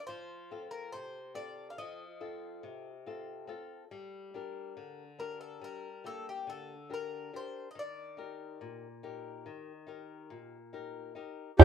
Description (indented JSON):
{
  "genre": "greek folk, Greek bouzouki band",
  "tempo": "140 BPM (eighths)",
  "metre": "9/8",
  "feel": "straight",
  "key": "unclear",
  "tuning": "A4 = 438 Hz",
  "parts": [
    { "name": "Greek bouzouki", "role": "melody", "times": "0.0-11.6 s", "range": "G4 to F5", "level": "-44 LUFS", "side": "left 3 dB", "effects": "none" },
    { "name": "flamenco guitar", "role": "accompaniment", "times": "0.1-11.6 s", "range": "Bb2 to Bb4", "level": "-45 LUFS", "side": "left 5 dB", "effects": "none" },
    { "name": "accordion", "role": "second line", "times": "11.6 s", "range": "G4", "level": "-20 LUFS", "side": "right 2 dB", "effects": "none" },
    { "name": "darbuka", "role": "percussion", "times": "11.6 s", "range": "none", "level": "-9 LUFS", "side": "right 2 dB", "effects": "none" }
  ],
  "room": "light reverb",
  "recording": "band playing live in one room",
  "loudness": "-41 LUFS",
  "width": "side -10 dB against mid",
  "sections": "0.0-11.6 A section",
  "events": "none",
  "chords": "0.1 F; 3.9 Gm; 7.8 Eb",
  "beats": "| 0.07 0.49 0.92 1.35 1.78 2.21 2.63 3.06 3.49 | 3.92 4.34 4.77 5.20 5.62 6.05 6.48 6.91 7.33 | 7.76 8.19 8.61 9.04 9.46 9.89 10.32 10.74 11.17 | 11.60"
}